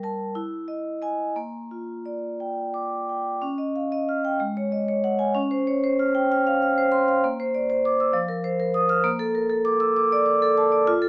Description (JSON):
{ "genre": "classical, contemporary piece for solo vibraphone", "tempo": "57-67 BPM (dotted quarters)", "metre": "6/8", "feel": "rubato", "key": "Bb lydian, Db lydian from 3.4 s", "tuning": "A4 = 440 Hz", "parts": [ { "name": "vibraphone with medium hard mallets", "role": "solo", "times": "0.0-11.1 s", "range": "F3 to F6", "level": "-21 LUFS", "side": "equal", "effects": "none" } ], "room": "light reverb", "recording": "small speaker sound", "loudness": "-21 LUFS", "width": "side -26 dB against mid", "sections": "0.0-3.4 A section; 3.4-11.1 B section", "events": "none", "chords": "0.3 Emaj7; 1.4 Bb6; 3.4 Dbadd9; 4.4 Ab7sus4; 5.3 Dbmaj7; 7.2 Bbadd9; 8.2 F7sus4; 9.1 Bbmaj7" }